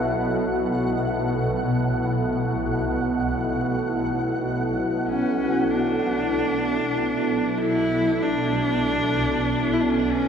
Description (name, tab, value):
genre	dark ambient drone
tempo	48 BPM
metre	4/4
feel	straight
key	B minor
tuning	A4 = 440 Hz
part	deep dark ambient pad	sustained chords	0.0-10.3 s	B3 to C#5	-25 LUFS	right 1 dB	chorus, built-in reverb
part	swarming drone	drone	0.0-10.3 s	B1 to B2	-26 LUFS	left 1 dB	built-in reverb, phaser
part	flickering grainy texture	texture	0.0-5.7 s	F#5	-32 LUFS	right 1 dB	built-in reverb
part	clear horsehead fiddle	melody	5.1-10.3 s	C#4 to E4	-24 LUFS	equal	diffuse ambient delay
room	wet huge ambient reverb, RT60 7.6 s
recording	none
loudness	-21 LUFS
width	side -7 dB against mid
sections	0.0-5.7 A section; 5.7-10.3 B section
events	none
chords	0.0 Bsus2; 5.7 Bmadd9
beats	| 0.65 1.89 3.16 4.44 | 5.71 6.96 8.22 9.47